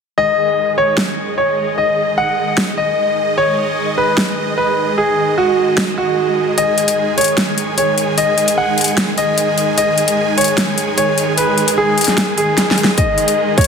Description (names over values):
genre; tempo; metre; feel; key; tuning
heavy wobble dubstep; 150 BPM; 4/4; half-time; unclear; A4 = 437 Hz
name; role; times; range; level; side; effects
clear concert grand piano; melody; 0.2-13.7 s; F#4 to F#5; -15 LUFS; left 1 dB; ping-pong delay
supersaw chords; sustained chords; 0.2-13.7 s; D#3 to G#5; -19 LUFS; right 2 dB; sidechain pumping
dubstep drum kit; drums; 1.0-13.7 s; hi-hat, snare drum; -18 LUFS; left 1 dB; none
electronic kick drum; drums; 13.0-13.7 s; none; -15 LUFS; equal; none
room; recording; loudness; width
moderate lush hall reverb, RT60 2.1 s; dense, heavily limited modern master; -13 LUFS; side -6 dB against mid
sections
0.2-13.7 A section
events
drum fill 12.6-13.0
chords
0.2 G#5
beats
| 0.18 0.58 0.98 1.38 | 1.78 2.18 2.58 2.98 | 3.38 3.78 4.18 4.58 | 4.98 5.38 5.78 6.18 | 6.58 6.98 7.38 7.78 | 8.18 8.58 8.98 9.38 | 9.78 10.18 10.58 10.98 | 11.38 11.78 12.18 12.58 | 12.98 13.38